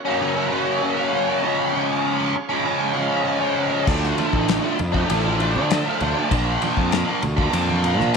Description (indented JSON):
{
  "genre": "psychedelic rock",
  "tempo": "98 BPM",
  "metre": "4/4",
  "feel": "straight",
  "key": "unclear",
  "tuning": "A4 = 445 Hz",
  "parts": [
    { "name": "bright tonewheel organ", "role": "sustained chords", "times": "0.0-8.2 s", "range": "C#4 to F#5", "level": "-33 LUFS", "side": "right 7 dB", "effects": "none" },
    { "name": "biting overdriven guitar", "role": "riff", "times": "0.1-8.2 s", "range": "F#2 to D4", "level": "-20 LUFS", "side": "equal", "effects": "flanger" },
    { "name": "fuzz fingered electric bass", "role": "bass", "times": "3.9-8.2 s", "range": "A1 to D3", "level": "-23 LUFS", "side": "equal", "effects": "overdrive" },
    { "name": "damped 70s drum kit", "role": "drums", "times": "3.9-8.2 s", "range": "crash cymbal, kick drum, ride cymbal, snare drum", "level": "-26 LUFS", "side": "left 3 dB", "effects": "none" },
    { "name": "congas", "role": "percussion", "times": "4.2-8.1 s", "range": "none", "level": "-33 LUFS", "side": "right 7 dB", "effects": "none" }
  ],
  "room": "light reverb, studio reverb",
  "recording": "1960s-style stereo",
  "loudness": "-18 LUFS",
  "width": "side -5 dB against mid",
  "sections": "0.0-8.2 A section",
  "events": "none",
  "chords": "0.0 F#; 1.4 C#; 3.9 Dmadd9; 6.3 Bb",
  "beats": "0.21 0.82 | 1.43 2.04 2.65 3.27 | 3.88 4.48 5.09 5.70 | 6.31 6.92 7.53 8.14"
}